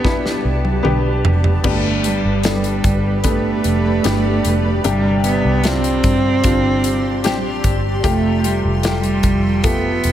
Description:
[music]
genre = pop ballad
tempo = 75 BPM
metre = 4/4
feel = straight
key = unclear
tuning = A4 = 441 Hz
[part]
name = warm cello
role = melody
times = 0.0-10.1 s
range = G3 to C4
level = -20 LUFS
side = right 3 dB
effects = none
[part]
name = felt-muted upright piano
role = accompaniment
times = 0.0-10.1 s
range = G2 to A4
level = -22 LUFS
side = left 5 dB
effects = none
[part]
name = granular cloud pad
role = sustained chords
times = 0.0-10.1 s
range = F4 to C6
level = -26 LUFS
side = equal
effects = built-in reverb
[part]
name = flamenco guitar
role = arpeggios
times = 0.0-10.1 s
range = G2 to B4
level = -27 LUFS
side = right 5 dB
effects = digital delay
[part]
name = vintage muted fingered electric bass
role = bass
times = 0.0-10.1 s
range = E1 to G2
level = -20 LUFS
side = equal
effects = none
[part]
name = modern studio drum kit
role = drums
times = 0.0-10.1 s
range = crash cymbal, hi-hat, kick drum, snare drum, toms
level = -20 LUFS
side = equal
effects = none
[sound]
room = studio ambience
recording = none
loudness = -14 LUFS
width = side -11 dB against mid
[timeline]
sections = 0.0-1.6 A section; 1.6-10.1 B section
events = drum fill 0.0-1.6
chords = 0.0 G; 4.8 Csus2/G; 8.0 Fadd9

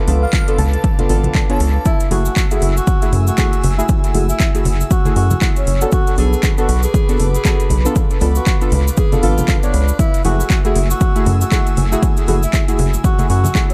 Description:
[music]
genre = deep house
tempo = 118 BPM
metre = 4/4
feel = swing 58% on 16ths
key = F# minor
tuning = A4 = 440 Hz
[part]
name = airy breathy pad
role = sustained chords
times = 0.0-13.7 s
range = A3 to E6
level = -31 LUFS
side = equal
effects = chorus, sidechain pumping
[part]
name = deep mellow chord stab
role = stabs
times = 0.0-13.7 s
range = A3 to C#5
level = -24 LUFS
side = equal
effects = chorus, sidechain pumping, analog delay
[part]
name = rubbery square bass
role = bass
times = 0.1-13.5 s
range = F#1 to F#2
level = -18 LUFS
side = equal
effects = sidechain pumping
[part]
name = house drum kit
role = drums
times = 0.1-13.7 s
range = handclaps, hi-hat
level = -28 LUFS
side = equal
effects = overdrive, tape echo
[part]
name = congas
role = percussion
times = 0.1-13.5 s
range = none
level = -28 LUFS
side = equal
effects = none
[part]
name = airy dreamy lead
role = melody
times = 0.2-1.9 s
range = E#5 to A5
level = -30 LUFS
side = equal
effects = chorus, tape echo
[part]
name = electronic kick drum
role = drums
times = 0.3-13.7 s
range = none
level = -19 LUFS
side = equal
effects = overdrive
[part]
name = mellow tenor saxophone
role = melody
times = 1.9-13.7 s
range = C#4 to G#4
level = -26 LUFS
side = equal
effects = tape echo
[part]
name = cabasa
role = percussion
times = 1.9-13.7 s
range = none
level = -33 LUFS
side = equal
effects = tape echo
[sound]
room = little or no reverb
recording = echo-heavy mix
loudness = -15 LUFS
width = mono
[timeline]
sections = 0.0-13.7 A section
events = none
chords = 0.0 C#7b9b13; 1.9 F#m9; 5.9 Bm7; 8.0 C#7b9b13; 10.0 F#m9

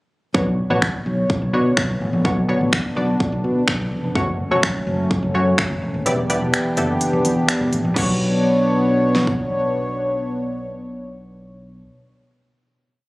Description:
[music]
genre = dance-pop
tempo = 126 BPM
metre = 4/4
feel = straight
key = B minor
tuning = A4 = 440 Hz
[part]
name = punchy chord stab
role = accompaniment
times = 0.3-11.8 s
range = A3 to D5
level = -23 LUFS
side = equal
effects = chorus, sidechain pumping
[part]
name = warm analog pad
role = sustained chords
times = 0.6-11.8 s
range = B2 to C#5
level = -22 LUFS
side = equal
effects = chorus, sidechain pumping
[part]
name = fingered electric bass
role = bass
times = 0.3-11.8 s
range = D#1 to B2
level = -22 LUFS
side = equal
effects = sidechain pumping
[part]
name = pop drum kit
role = drums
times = 0.3-9.4 s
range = crash cymbal, finger snaps, hi-hat, kick drum, snare drum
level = -21 LUFS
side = equal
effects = none
[sound]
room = light reverb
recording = recorded on a phone in the room, club reverb, compression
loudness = -17 LUFS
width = side -21 dB against mid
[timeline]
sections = 0.3-8.0 verse; 8.0-11.8 final chord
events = kick muted 6.1-8.0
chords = 0.3 Bmadd9; 4.2 F#m; 6.1 Em7; 8.0 Bmadd9

